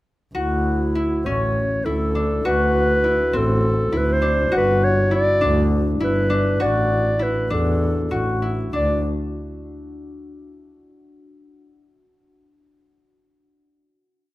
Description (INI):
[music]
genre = contemporary instrumental, chamber music in an uneven meter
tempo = 202 BPM (eighths)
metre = 7/8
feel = straight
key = D major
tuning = A4 = 440 Hz
[part]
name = concert harp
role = arpeggios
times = 0.3-9.0 s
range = C4 to F#4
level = -23 LUFS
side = left 2 dB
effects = none
[part]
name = muted double bass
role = bass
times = 0.3-9.0 s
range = G1 to E2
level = -22 LUFS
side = equal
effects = none
[part]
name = dark clarinet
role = melody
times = 0.4-9.0 s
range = E4 to D5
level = -21 LUFS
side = equal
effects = none
[sound]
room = little or no reverb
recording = close, detailed microphones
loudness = -17 LUFS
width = side -17 dB against mid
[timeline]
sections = 0.4-8.7 A section; 8.7-10.8 final note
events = none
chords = 0.4 Dmaj9; 2.4 D13; 4.5 Gmaj7; 6.6 Asus4; 8.7 N.C.